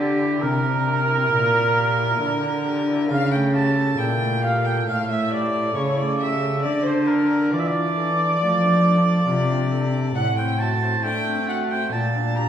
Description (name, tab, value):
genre	classical, baroque-style sonata movement with continuo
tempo	68 BPM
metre	4/4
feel	straight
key	D minor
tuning	A4 = 440 Hz
part	rich violin	melody	0.0-12.5 s	G4 to Bb5	-28 LUFS	left 3 dB	none
part	warm oboe	second line	0.0-12.5 s	G4 to Bb5	-24 LUFS	right 3 dB	none
part	pipe organ, cornet	accompaniment	0.0-12.5 s	A2 to D5	-27 LUFS	left 2 dB	none
part	rich cello	bass	0.0-12.5 s	A2 to A3	-22 LUFS	equal	none
room	wet recital hall reverb, RT60 1.5 s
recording	heard from further back in the room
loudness	-19 LUFS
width	side -9 dB against mid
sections	0.0-12.5 A section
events	none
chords	0.0 Em7b5; 3.1 A7; 6.6 Dm; 10.2 D7/A; 11.9 Gm/Bb